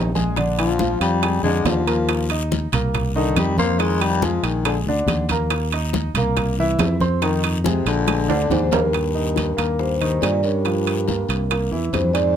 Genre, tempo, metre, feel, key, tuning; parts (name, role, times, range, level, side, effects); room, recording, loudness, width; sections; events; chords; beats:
Afro-Cuban jazz; 140 BPM; 4/4; straight; Eb major; A4 = 441 Hz
growling baritone saxophone; second line; 0.0-12.4 s; G2 to Bb3; -24 LUFS; left 5 dB
warm concert grand piano; accompaniment; 0.0-12.4 s; D3 to Eb6; -25 LUFS; right 1 dB
fingered electric bass; bass; 0.0-12.4 s; Bb1 to G2; -22 LUFS; equal
bongos; percussion; 0.1-12.2 s; -30 LUFS; left 8 dB
congas; percussion; 0.2-12.2 s; -28 LUFS; equal
guiro; percussion; 0.2-12.4 s; -35 LUFS; left 6 dB
timbales; percussion; 0.4-12.4 s; -26 LUFS; right 10 dB
vibraphone with soft mallets; melody; 8.5-12.4 s; Bb4 to D5; -24 LUFS; right 1 dB
light reverb; -18 LUFS; side -9 dB against mid
0.0-8.9 A section; 8.9-12.4 B section
baritone saxophone solo 0.0-8.9; drum fill 8.1-8.9
0.4 Bb7; 2.1 Eb5; 2.9 Cm7; 3.8 Fm7; 4.7 Bb7; 5.5 Eb5; 6.4 C7; 7.2 Fm7; 8.1 Bb7; 8.9 Eb; 10.7 C7sus4; 11.5 C7
| 0.37 0.80 1.23 1.66 | 2.08 2.51 2.94 3.37 | 3.80 4.22 4.65 5.08 | 5.51 5.94 6.37 6.79 | 7.22 7.65 8.08 8.51 | 8.94 9.36 9.79 10.22 | 10.65 11.08 11.51 11.94